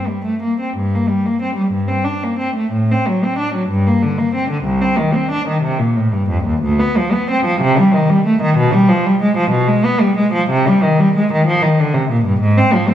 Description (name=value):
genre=classical, baroque-style suite movement for unaccompanied cello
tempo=62 BPM (dotted quarters)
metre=6/8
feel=rubato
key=G minor, C minor from 8.6 s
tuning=A4 = 441 Hz
part: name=rich cello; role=solo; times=0.0-12.9 s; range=C2 to D4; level=-13 LUFS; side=equal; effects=none
room=wet recital hall reverb, RT60 1.8 s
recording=heard from further back in the room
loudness=-13 LUFS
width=side -10 dB against mid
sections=0.7-12.9 A section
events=none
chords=none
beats=| 0.74 1.72 | 2.73 3.71 | 4.69 5.66 | 6.65 7.61 | 8.56 9.50 | 10.48 11.45 | 12.40